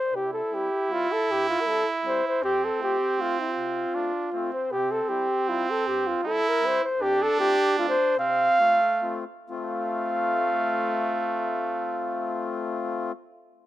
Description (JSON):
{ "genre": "alpine folk, alpine dance band", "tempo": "125-158 BPM", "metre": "3/4", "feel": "straight", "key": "F major", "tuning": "A4 = 439 Hz", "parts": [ { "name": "mellow flugelhorn", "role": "melody", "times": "0.0-13.1 s", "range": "F4 to F5", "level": "-24 LUFS", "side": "equal", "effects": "none" }, { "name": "clear trumpet", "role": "second line", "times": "0.1-13.1 s", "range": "A3 to E4", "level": "-29 LUFS", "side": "right 4 dB", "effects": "none" }, { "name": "mellow accordion", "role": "accompaniment", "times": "0.1-13.1 s", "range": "F2 to F4", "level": "-34 LUFS", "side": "left 5 dB", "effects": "none" } ], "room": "light reverb, small room reverb", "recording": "rough home demo mix", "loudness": "-23 LUFS", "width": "side -14 dB against mid", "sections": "0.0-4.7 A section; 4.7-9.5 B section; 9.5-12.4 C section", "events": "slowing down 7.0-9.5", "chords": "0.1 C; 2.4 F; 4.7 C; 7.0 F", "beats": "| 0.13 0.51 0.89 | 1.27 1.66 2.04 | 2.42 2.80 3.18 | 3.56 3.94 4.33 | 4.71 5.10 5.48 | 5.86 6.24 6.62 | 7.00 7.39 7.78 | 8.18 8.59 9.03 | 9.50 9.98 10.46 | 10.93 11.40 11.88" }